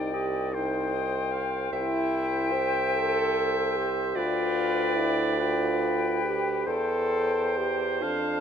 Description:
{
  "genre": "classical, slow romantic movement for wind quintet",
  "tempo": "42-51 BPM (dotted quarters)",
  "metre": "6/8",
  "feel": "rubato",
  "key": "C major",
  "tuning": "A4 = 443 Hz",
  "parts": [
    { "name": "hollow concert flute", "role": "melody", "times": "0.0-8.4 s", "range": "G5 to A5", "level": "-33 LUFS", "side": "left 8 dB", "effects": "none" },
    { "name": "warm oboe", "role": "second line", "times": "0.0-8.4 s", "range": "B4 to F5", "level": "-33 LUFS", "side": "left 3 dB", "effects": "none" },
    { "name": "bright clarinet", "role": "accompaniment", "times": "0.0-8.4 s", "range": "C5 to F5", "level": "-32 LUFS", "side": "right 6 dB", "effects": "none" },
    { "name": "mellow French horn", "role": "accompaniment", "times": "0.0-8.4 s", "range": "D4 to C5", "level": "-29 LUFS", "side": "equal", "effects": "none" },
    { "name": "mellow bassoon", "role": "bass", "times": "0.0-8.4 s", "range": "C2 to F2", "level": "-30 LUFS", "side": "right 3 dB", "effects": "none" }
  ],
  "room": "moderate scoring stage reverb, RT60 1.6 s",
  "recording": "none",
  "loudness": "-24 LUFS",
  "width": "side -8 dB against mid",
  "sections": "0.0-8.4 A section",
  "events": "none",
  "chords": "0.0 Cm; 1.7 C; 4.2 G7/D; 6.7 C/E"
}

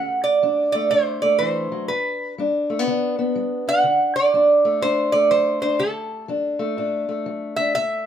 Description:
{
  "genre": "acoustic country blues, solo or duo",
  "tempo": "123 BPM",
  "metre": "4/4",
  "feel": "swing 64% on 8ths",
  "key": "D mixolydian",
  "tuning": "A4 = 441 Hz",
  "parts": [
    { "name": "lap resonator guitar", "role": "melody", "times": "0.0-8.0 s", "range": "A4 to F#5", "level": "-18 LUFS", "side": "right 3 dB", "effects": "none" },
    { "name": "fingerpicked steel-string acoustic guitar", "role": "accompaniment", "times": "0.0-8.1 s", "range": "G2 to D4", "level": "-24 LUFS", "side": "left 3 dB", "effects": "none" }
  ],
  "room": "wet studio reverb, RT60 0.7 s",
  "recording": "minimal, uncompressed stereo recording",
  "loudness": "-18 LUFS",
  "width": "side -9 dB against mid",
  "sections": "0.0-8.1 A section",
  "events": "none",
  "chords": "0.0 D; 1.9 G; 3.8 D"
}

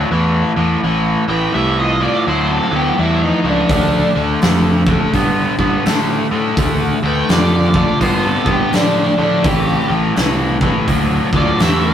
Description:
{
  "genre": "blues rock power trio and southern rock",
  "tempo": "84 BPM",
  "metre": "4/4",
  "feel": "swing 63% on 8ths",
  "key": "A minor",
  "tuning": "A4 = 439 Hz",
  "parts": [
    { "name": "biting overdriven guitar", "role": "riff", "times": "0.0-11.9 s", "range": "A2 to B3", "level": "-17 LUFS", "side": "left 1 dB", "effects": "none" },
    { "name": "fuzz fingered electric bass", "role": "bass", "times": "0.0-11.9 s", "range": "A1 to A2", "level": "-19 LUFS", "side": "equal", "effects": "overdrive" },
    { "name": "octave-fuzz lead guitar", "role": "melody", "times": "1.3-11.9 s", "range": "D4 to G5", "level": "-20 LUFS", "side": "right 1 dB", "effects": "distortion, tape echo" },
    { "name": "dark smooth lead guitar", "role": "second line", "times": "1.3-11.9 s", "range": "F3 to C5", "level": "-22 LUFS", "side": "right 1 dB", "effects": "overdrive" },
    { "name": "huge arena drum kit", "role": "drums", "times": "3.7-11.8 s", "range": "hi-hat, kick drum, snare drum", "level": "-18 LUFS", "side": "equal", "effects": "none" }
  ],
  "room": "moderate studio reverb, RT60 0.6 s",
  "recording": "rough rehearsal-room recording",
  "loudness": "-13 LUFS",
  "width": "side -9 dB against mid",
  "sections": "0.0-11.9 A section",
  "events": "none",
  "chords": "0.0 Am7; 3.7 Dm; 9.4 Am7"
}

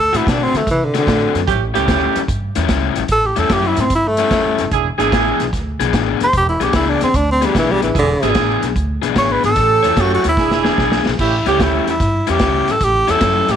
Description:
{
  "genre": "electric blues shuffle",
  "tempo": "148 BPM",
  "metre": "4/4",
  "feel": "swing 67% on 8ths",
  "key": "A mixolydian",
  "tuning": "A4 = 440 Hz",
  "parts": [
    { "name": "warm tenor saxophone", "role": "melody", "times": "0.0-13.6 s", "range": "D3 to C#5", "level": "-16 LUFS", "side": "right 1 dB", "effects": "slapback echo" },
    { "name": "upright bass", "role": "bass", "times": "0.0-13.6 s", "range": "E1 to D3", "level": "-21 LUFS", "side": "right 1 dB", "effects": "none" },
    { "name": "raw garage guitar", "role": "riff", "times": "0.1-13.5 s", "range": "A2 to C#5", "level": "-20 LUFS", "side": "left 14 dB", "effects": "overdrive" },
    { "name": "vintage drum kit", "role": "drums", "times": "0.1-13.5 s", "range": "crash cymbal, hi-hat, kick drum, snare drum", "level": "-21 LUFS", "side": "equal", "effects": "none" },
    { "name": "clear horn section", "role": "stabs", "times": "1.5-2.2, 4.7-5.4, 7.9-11.9 s", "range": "A3 to A4", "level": "-19 LUFS", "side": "right 14 dB", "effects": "none" }
  ],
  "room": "light reverb",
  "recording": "1960s-style stereo with parts hard left and right",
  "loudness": "-13 LUFS",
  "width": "side -8 dB against mid",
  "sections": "0.0-11.2 A section; 11.2-13.6 B section",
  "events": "tenor saxophone solo 0.0-11.2; drum fill 10.4-11.2",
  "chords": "0.0 D7; 1.5 A7; 4.7 E7; 9.6 A7; 10.4 E7; 11.2 A7"
}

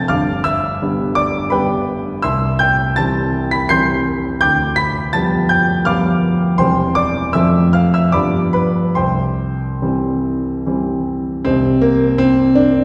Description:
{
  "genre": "classical, romantic character piece for solo piano",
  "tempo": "70-86 BPM",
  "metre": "3/4",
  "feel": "rubato",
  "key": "C major",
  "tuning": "A4 = 440 Hz",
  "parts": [
    { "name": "warm grand piano", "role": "solo", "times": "0.0-12.8 s", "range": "E1 to C7", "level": "-16 LUFS", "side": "equal", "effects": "none" }
  ],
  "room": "wet recital hall reverb, RT60 1.7 s",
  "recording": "heard from further back in the room",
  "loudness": "-16 LUFS",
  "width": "mono",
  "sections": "0.0-11.5 A section; 11.5-12.8 B section",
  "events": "none",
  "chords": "0.1 G7; 2.2 C; 4.4 G7/D; 6.6 C/E; 7.4 F; 8.1 G7; 9.0 C; 11.5 Cm"
}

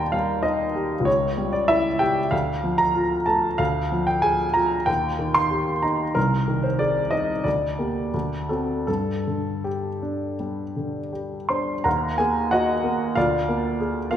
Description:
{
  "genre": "classical, romantic character piece for solo piano",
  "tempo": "76-97 BPM",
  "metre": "4/4",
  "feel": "rubato",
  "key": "G minor",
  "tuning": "A4 = 440 Hz",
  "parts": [
    { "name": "warm upright piano", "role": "solo", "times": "0.0-14.2 s", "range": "C2 to C6", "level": "-21 LUFS", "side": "equal", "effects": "none" }
  ],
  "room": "moderate scoring stage reverb, RT60 1.9 s",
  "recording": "recorded in a church or concert hall",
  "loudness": "-21 LUFS",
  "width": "side -10 dB against mid",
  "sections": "0.0-11.9 A section; 11.9-14.2 B section",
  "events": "none",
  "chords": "0.0 Eb69; 1.1 C#dim; 2.3 Dm; 3.6 Ddim; 4.9 Eb; 6.2 Ab/C; 7.5 Gm/D; 8.1 D7; 8.9 G5; 11.9 Ebm; 13.2 Bb7/D"
}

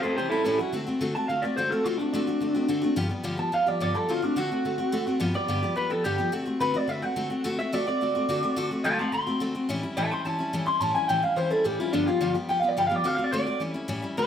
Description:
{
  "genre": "rock",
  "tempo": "214 BPM",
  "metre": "4/4",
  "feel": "straight",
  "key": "D mixolydian",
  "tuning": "A4 = 440 Hz",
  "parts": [
    { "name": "electric guitar through a small old amp", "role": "melody", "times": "0.0-14.3 s", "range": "D4 to C6", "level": "-26 LUFS", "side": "equal", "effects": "phaser, tape echo" },
    { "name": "picked steel-string acoustic guitar", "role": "accompaniment", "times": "0.0-14.3 s", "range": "G2 to G4", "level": "-28 LUFS", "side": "left 2 dB", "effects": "none" }
  ],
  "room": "moderate echo chamber reverb, RT60 1.5 s, small room reverb",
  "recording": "none",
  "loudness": "-24 LUFS",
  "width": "side -8 dB against mid",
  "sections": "0.7-14.2 A section",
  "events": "clean electric guitar solo 0.7-14.2",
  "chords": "0.2 A7; 0.7 D7; 3.0 G7; 4.1 D7; 5.2 G7; 6.3 D7; 9.7 A7; 11.9 G7; 13.0 D7; 13.6 A7"
}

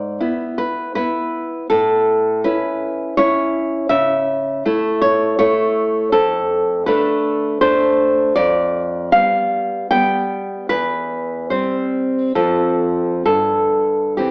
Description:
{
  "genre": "romantic piece for solo classical guitar",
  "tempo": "64-83 BPM",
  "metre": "3/4",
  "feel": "rubato",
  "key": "A major, C major from 6.1 s",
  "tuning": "A4 = 440 Hz",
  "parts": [
    { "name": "nylon-string guitar", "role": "solo", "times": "0.0-14.3 s", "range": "E2 to G5", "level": "-15 LUFS", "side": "equal", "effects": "none" }
  ],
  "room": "moderate recital hall reverb, RT60 1.6 s",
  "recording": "AM radio sound",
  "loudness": "-15 LUFS",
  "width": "side -36 dB against mid",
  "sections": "0.0-14.3 A section",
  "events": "none",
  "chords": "0.0 E7(no3); 1.7 A; 3.9 A/C#; 6.1 Dm/F; 8.4 G7/F; 10.7 C/E; 12.4 F; 13.3 C/G (rootless)"
}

